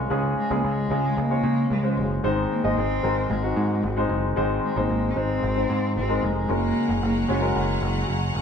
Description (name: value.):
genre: pop.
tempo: 113 BPM.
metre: 4/4.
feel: straight.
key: unclear.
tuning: A4 = 438 Hz.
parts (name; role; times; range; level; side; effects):
clear baby grand piano; accompaniment; 0.0-8.4 s; Ab2 to Eb5; -25 LUFS; left 1 dB; none.
overdriven picked electric bass; bass; 0.0-8.4 s; F1 to Db3; -26 LUFS; right 1 dB; none.
dark cello; melody; 0.4-8.3 s; Gb3 to Db4; -28 LUFS; left 1 dB; none.
clear symphonic string section; sustained chords; 6.5-8.4 s; Ab4 to Db6; -32 LUFS; left 1 dB; none.
room: wet studio reverb, RT60 0.8 s.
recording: band playing live in one room, lossy compression artefacts.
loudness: -21 LUFS.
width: side -7 dB against mid.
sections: 0.0-6.5 A section; 6.5-8.4 B section.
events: none.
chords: 0.0 Db; 2.2 Ab; 6.5 Gbadd9.